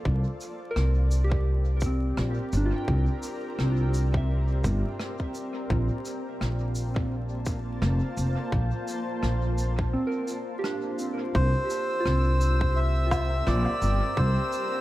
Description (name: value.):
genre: ambient dub.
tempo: 85 BPM.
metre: 4/4.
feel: swing 58% on 16ths.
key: C mixolydian.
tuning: A4 = 440 Hz.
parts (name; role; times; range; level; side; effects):
granular cloud pad; sustained chords; 0.0-14.8 s; Bb3 to A5; -35 LUFS; equal; built-in reverb.
soft synth bell; arpeggios; 0.0-14.8 s; C4 to G5; -34 LUFS; right 1 dB; chorus, tape echo.
upright bass; bass; 0.1-14.4 s; F1 to C2; -24 LUFS; equal; none.
electronic kick drum; drums; 0.1-14.3 s; none; -30 LUFS; equal; overdrive.
shaker, rim click and woodblock; drums; 0.4-14.7 s; none; -37 LUFS; equal; dub echo.
melodica; melody; 11.3-14.8 s; C5 to E5; -28 LUFS; equal; dub echo.
drifting glass-harmonics texture; texture; 11.6-14.8 s; E6; -37 LUFS; left 2 dB; chorus, built-in reverb.
room: studio reverb.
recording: echo-heavy mix, vinyl crackle.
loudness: -24 LUFS.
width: side -16 dB against mid.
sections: 0.0-11.3 A section; 11.3-14.8 B section.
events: break 9.9-11.3.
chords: 0.1 C7sus4; 5.7 Bbmaj7; 11.3 C7sus4.